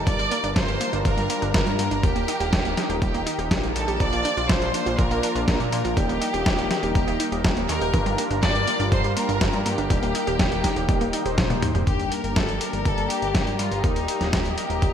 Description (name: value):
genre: italo disco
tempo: 122 BPM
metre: 4/4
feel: straight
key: G minor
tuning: A4 = 442 Hz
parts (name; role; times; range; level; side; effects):
- rich chamber violin section; melody; 0.0-14.9 s; Eb4 to D6; -28 LUFS; equal; ping-pong delay
- lush unison pad; sustained chords; 0.0-14.9 s; Eb3 to Bb5; -30 LUFS; equal; chorus
- wide unison pluck; arpeggios; 0.0-11.9 s; F3 to G4; -31 LUFS; right 3 dB; ping-pong delay
- fat analog bass; bass; 0.0-14.9 s; Eb1 to Bb2; -28 LUFS; equal; none
- dusty soul sampler-style drum kit; drums; 0.1-14.9 s; hi-hat, snare drum, toms; -27 LUFS; equal; overdrive, gated reverb
- electronic kick drum; drums; 0.1-14.9 s; none; -24 LUFS; equal; overdrive
- mellow synth brass; stabs; 4.0-14.9 s; F3 to C5; -30 LUFS; left 1 dB; chorus, phaser
room: moderate lush hall reverb, RT60 2.1 s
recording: bright 1980s-style digital production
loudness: -20 LUFS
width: side -8 dB against mid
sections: 0.0-11.9 A section; 11.9-14.9 B section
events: drum fill 11.4-11.9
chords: 0.1 Gm7; 2.0 Eb; 4.0 Bb; 6.0 Eb; 7.9 Gm7; 9.9 Eb; 11.9 Gm; 13.8 Eb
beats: | 0.07 0.56 1.05 1.54 | 2.04 2.53 3.02 3.51 | 4.00 4.49 4.99 5.48 | 5.97 6.46 6.95 7.45 | 7.94 8.43 8.92 9.41 | 9.90 10.40 10.89 11.38 | 11.87 12.36 12.86 13.35 | 13.84 14.33 14.82